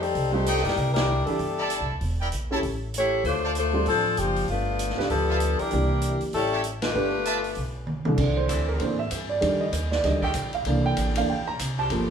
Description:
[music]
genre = jazz, big band swing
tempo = 194 BPM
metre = 4/4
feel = swing 60% on 8ths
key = C mixolydian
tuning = A4 = 439 Hz
[part]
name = warm saxophone section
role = melody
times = 0.0-7.7 s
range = F3 to C#5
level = -25 LUFS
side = left 3 dB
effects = none
[part]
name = upright bass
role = bass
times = 0.0-12.1 s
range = E1 to A2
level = -28 LUFS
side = equal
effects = none
[part]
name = vintage drum kit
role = drums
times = 0.0-12.0 s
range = crash cymbal, hi-hat, kick drum, ride cymbal, snare drum, toms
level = -33 LUFS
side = right 1 dB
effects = none
[part]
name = warm concert grand piano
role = accompaniment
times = 0.3-12.1 s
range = C2 to Bb5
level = -26 LUFS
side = right 2 dB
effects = none
[part]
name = bright trumpet section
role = stabs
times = 0.5-7.4 s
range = Eb4 to A5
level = -30 LUFS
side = right 2 dB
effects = none
[part]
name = bright saxophone section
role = sustained chords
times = 8.5-12.1 s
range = Eb3 to A4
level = -35 LUFS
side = equal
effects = none
[sound]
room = wet large studio reverb, RT60 0.9 s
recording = band playing live in one room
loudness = -22 LUFS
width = side -7 dB against mid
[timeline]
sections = 0.0-8.2 A section; 8.2-12.1 B section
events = band accent 0.9, 6.8; drum fill 7.9-8.2; grand piano solo 8.2-12.1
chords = 0.0 F13; 0.8 C13; 2.0 Em7b5; 2.6 A7; 3.2 Dm7; 4.5 G9; 5.7 C9; 6.3 A7; 7.0 G13; 8.2 C13; 9.4 F13; 10.7 C13

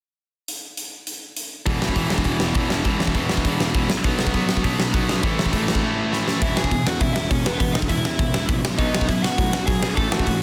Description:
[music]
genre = punk rock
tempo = 202 BPM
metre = 4/4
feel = straight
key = E major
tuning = A4 = 439 Hz
[part]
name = big rock drum kit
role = drums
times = 0.5-10.3 s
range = hi-hat, kick drum, snare drum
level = -25 LUFS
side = equal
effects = soft clipping on snare
[part]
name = sludgy distorted guitar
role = riff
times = 1.7-6.4 s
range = E2 to B3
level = -31 LUFS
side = equal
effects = none
[part]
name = tight distorted guitar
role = riff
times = 1.7-10.4 s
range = E2 to B3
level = -27 LUFS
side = equal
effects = distortion
[part]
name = fuzz picked electric bass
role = bass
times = 1.7-10.4 s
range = E1 to B2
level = -29 LUFS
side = equal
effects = overdrive
[part]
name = dark smooth lead guitar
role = melody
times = 6.4-10.4 s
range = B3 to A5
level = -29 LUFS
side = equal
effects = overdrive, delay
[sound]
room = little or no reverb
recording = dense, heavily limited modern master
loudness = -22 LUFS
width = mono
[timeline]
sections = 0.5-1.7 A section; 1.7-6.4 B section; 6.4-10.4 C section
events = drum fill 6.1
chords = 0.5 N.C.; 1.7 E5; 3.9 B5; 5.2 A5; 6.4 E; 8.6 B

